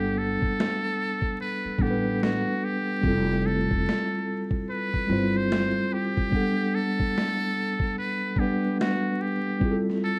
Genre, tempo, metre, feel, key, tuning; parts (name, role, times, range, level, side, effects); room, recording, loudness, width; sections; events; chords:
lo-fi hip hop; 73 BPM; 4/4; swing 63% on 16ths; G major; A4 = 440 Hz
trumpet with metal mute; melody; 0.0-10.2 s; F#4 to C5; -32 LUFS; equal; low-pass filter, plate reverb
mellow tine electric piano; accompaniment; 0.0-10.2 s; G3 to F#5; -29 LUFS; equal; low-pass filter, plate reverb
upright bass; bass; 0.0-5.7 s; F1 to A1; -34 LUFS; equal
boom bap sampler-style drum kit; drums; 0.4-10.0 s; kick drum, snare drum; -32 LUFS; equal
wet studio reverb, RT60 0.5 s; rough home demo mix, vinyl crackle; -26 LUFS; mono
0.0-10.2 A section
break 0.0-10.2
0.0 Gmaj9; 3.0 Fmaj9; 6.3 Gmaj9; 9.6 Fmaj9